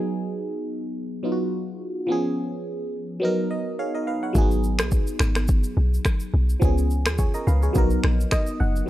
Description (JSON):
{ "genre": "afrobeats", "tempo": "106 BPM", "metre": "4/4", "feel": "swing 55% on 16ths", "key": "G# dorian", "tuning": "A4 = 440 Hz", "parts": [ { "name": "barking FM electric piano", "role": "accompaniment", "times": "0.0-8.9 s", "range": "E#3 to F#5", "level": "-26 LUFS", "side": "equal", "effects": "phaser, low-pass filter" }, { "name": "deep log drum bass", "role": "bass", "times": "4.4-8.8 s", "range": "F#1 to D#2", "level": "-21 LUFS", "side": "equal", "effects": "none" }, { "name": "afro-pop drum kit", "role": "drums", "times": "4.4-8.9 s", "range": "finger snaps, kick drum, rim click, shaker", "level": "-22 LUFS", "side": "equal", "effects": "overdrive" } ], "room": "little or no reverb", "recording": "dry, gritty hardware recording, cassette tape", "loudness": "-21 LUFS", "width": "side -14 dB against mid", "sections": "0.0-4.4 A section; 4.4-8.9 B section", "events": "filter sweep on FM electric piano 0.0-4.4; FM electric piano fill 3.2-4.4, 8.0-8.9", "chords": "0.0 G#m7; 2.1 C#7; 3.2 Bmaj7; 4.4 G#m7; 6.6 C#7; 7.8 Bmaj7" }